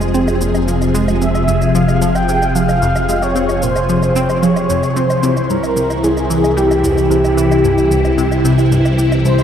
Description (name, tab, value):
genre	ambient, sequencer-driven space music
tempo	112 BPM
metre	4/4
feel	straight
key	F harmonic minor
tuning	A4 = 440 Hz
part	phased string machine	sustained chords	0.0-9.4 s	C3 to Ab4	-16 LUFS	equal	ensemble chorus, phaser, shimmer reverb
part	fat analog bass	bass	0.0-9.4 s	F1 to C2	-19 LUFS	equal	none
part	shaker and woodblock	percussion	0.0-9.4 s	none	-28 LUFS	right 1 dB	tape echo
part	tight sequenced synth	riff	0.1-9.4 s	C2 to C4	-19 LUFS	equal	chorus, phaser, tape echo
part	breathy flute-like synth lead	melody	1.2-9.4 s	G4 to G5	-18 LUFS	equal	ensemble chorus, shimmer reverb, tape echo
room	wet cathedral reverb, RT60 6.2 s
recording	in a vast, echoing space, faint mains hum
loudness	-12 LUFS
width	side -9 dB against mid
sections	0.0-9.4 A section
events	none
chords	0.0 Fm; 5.0 C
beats	0.14 | 0.68 1.21 1.75 2.29 | 2.82 3.36 3.89 4.43 | 4.96 5.50 6.04 6.57 | 7.11 7.64 8.18 8.71 | 9.25